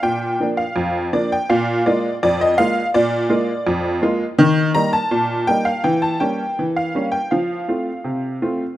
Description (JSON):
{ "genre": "ragtime piano", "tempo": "82 BPM", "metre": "2/4", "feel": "straight", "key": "Bb major", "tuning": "A4 = 442 Hz", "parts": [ { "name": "honky-tonk upright piano", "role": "solo", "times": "0.0-8.8 s", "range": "F2 to Bb5", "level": "-17 LUFS", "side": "equal", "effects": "none" } ], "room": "light reverb, studio ambience", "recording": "rough home demo mix", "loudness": "-16 LUFS", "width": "side -14 dB against mid", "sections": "0.0-8.8 A section", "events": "none", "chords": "0.0 Bb; 1.5 Bb7; 4.4 Eb; 5.9 Edim7; 7.3 F" }